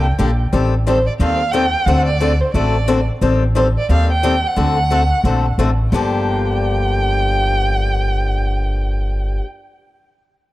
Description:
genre	acoustic string swing (jazz manouche)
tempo	178 BPM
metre	4/4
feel	swing 61% on 8ths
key	G minor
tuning	A4 = 440 Hz
part	dark violin	melody	0.0-9.4 s	C5 to G5	-20 LUFS	right 2 dB	none
part	picked swing-style acoustic guitar	accompaniment	0.0-9.5 s	G2 to A4	-20 LUFS	left 4 dB	none
part	upright bass	bass	0.0-9.4 s	G1 to Eb2	-17 LUFS	equal	none
room	light reverb, small room ambience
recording	dark, warm production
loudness	-14 LUFS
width	side -16 dB against mid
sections	0.5-5.9 A section; 5.9-8.6 B section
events	none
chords	0.0 Gm; 0.5 Am7b5; 1.9 D7; 3.2 Am7b5; 4.6 D7; 5.9 Gm7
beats	0.18 | 0.52 0.86 1.19 1.53 | 1.87 2.20 2.54 2.88 | 3.22 3.55 3.89 4.23 | 4.57 4.90 5.24 5.58 | 5.91 6.25 6.59 6.93 | 7.26 7.60 7.94 8.28

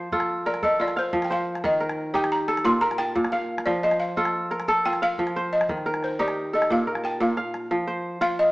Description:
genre	west african traditional, West African string and xylophone music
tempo	118 BPM (dotted quarters)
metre	12/8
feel	straight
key	F mixolydian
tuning	A4 = 441 Hz
part	kora	arpeggios	0.0-8.5 s	Bb2 to A5	-24 LUFS	equal	none
part	calabash	percussion	0.1-7.7 s	none	-36 LUFS	left 1 dB	none
part	balafon	melody	0.5-8.5 s	C5 to C6	-24 LUFS	equal	none
room	moderate stone room reverb, RT60 1.3 s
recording	band playing live in one room, small speaker sound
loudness	-22 LUFS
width	side -20 dB against mid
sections	0.0-7.7 A section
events	balafon solo 0.0-7.7; drum fill 7.2-7.7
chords	0.0 F; 1.6 Eb; 2.7 Bb5; 3.7 F; 5.7 Eb; 6.7 Bb5; 7.7 F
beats	0.12 0.62 1.13 | 1.64 2.15 2.65 3.16 | 3.66 4.17 4.68 5.18 | 5.69 6.20 6.70 7.21 | 7.71 8.21

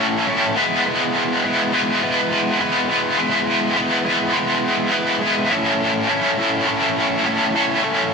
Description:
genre	rock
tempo	104 BPM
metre	4/4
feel	straight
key	E major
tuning	A4 = 443 Hz
part	cranked stack guitar	solo	0.0-8.1 s	A2 to B4	-16 LUFS	equal	overdrive, harmonic tremolo
room	light reverb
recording	band playing live in one room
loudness	-16 LUFS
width	side -4 dB against mid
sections	0.0-8.1 A section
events	none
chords	0.0 A; 0.6 E/G#; 5.5 A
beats	0.30 | 0.88 1.46 2.04 2.62 | 3.20 3.77 4.35 4.93 | 5.51 6.09 6.67 7.25 | 7.83

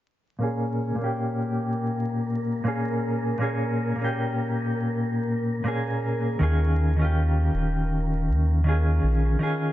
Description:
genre	trip hop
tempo	80 BPM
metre	4/4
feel	swing 58% on 16ths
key	Bb dorian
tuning	A4 = 440 Hz
part	mellow electric guitar	accompaniment	0.4-9.7 s	Bb2 to Ab4	-25 LUFS	left 1 dB	tremolo, low-pass filter, tape echo
part	wind-like tuned noise texture	texture	1.6-9.4 s	Bb4	-37 LUFS	right 2 dB	built-in reverb
part	soft dub sub bass	bass	6.4-9.4 s	Eb1 to Eb2	-22 LUFS	equal	none
room	light reverb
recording	vinyl crackle, nothing above 7.6 kHz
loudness	-23 LUFS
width	side -14 dB against mid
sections	0.4-9.7 A section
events	filter sweep on clean electric guitar 0.4-9.7; break 9.4-9.7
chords	0.4 Bbm7; 6.4 Eb9sus4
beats	| 0.41 1.16 1.91 2.65 | 3.40 4.16 4.91 5.66 | 6.41 7.16 7.91 8.65 | 9.40

